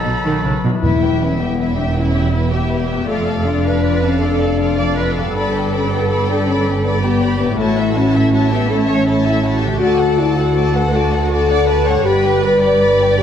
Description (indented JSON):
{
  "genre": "cinematic",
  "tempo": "107 BPM (dotted quarters)",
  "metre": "12/8",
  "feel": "straight",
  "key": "unclear",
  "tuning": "A4 = 435 Hz",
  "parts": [
    { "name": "warm symphonic violin section", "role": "melody", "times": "0.0-13.2 s", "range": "D5 to Cb6", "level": "-27 LUFS", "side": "left 1 dB", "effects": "none" },
    { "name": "clear oboe", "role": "second line", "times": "0.0-0.6 s", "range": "A4", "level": "-24 LUFS", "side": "right 1 dB", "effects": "none" },
    { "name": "warm symphonic violin section", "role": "second line", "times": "0.0-13.2 s", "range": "Eb4 to F#5", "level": "-24 LUFS", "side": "left 3 dB", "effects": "none" },
    { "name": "concert harp", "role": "arpeggios", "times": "0.0-13.2 s", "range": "E2 to E5", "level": "-27 LUFS", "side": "left 7 dB", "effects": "none" },
    { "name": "rich symphonic cello section", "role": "bass", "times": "0.0-13.2 s", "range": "D2 to Eb3", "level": "-21 LUFS", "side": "right 3 dB", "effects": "none" },
    { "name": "rich symphonic viola section", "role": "accompaniment", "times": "0.1-13.2 s", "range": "Eb3 to D5", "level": "-22 LUFS", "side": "right 2 dB", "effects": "none" },
    { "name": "rich symphonic double bass section", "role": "bass", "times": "0.1-13.2 s", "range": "E1 to D2", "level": "-22 LUFS", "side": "right 4 dB", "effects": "none" },
    { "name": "dark French horn section", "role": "sustained chords", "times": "0.8-13.2 s", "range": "A3 to B4", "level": "-17 LUFS", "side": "left 4 dB", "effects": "none" },
    { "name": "timpani", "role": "percussion", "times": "0.8-1.4 s", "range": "E2", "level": "-22 LUFS", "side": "right 1 dB", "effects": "none" }
  ],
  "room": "moderate scoring stage reverb, RT60 1.6 s",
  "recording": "none",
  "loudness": "-13 LUFS",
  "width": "side -8 dB against mid",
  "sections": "0.8-13.2 A section",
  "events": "none",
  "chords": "0.0 Cb7; 0.8 Em; 3.1 Dm/F; 5.3 G; 7.6 A; 9.8 D; 12.1 G",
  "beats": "0.25 | 0.83 1.40 1.96 2.52 | 3.09 3.65 4.22 4.78 | 5.34 5.90 6.46 7.02 | 7.58 8.14 8.70 9.26 | 9.82 10.38 10.94 11.50 | 12.06 12.63 13.19"
}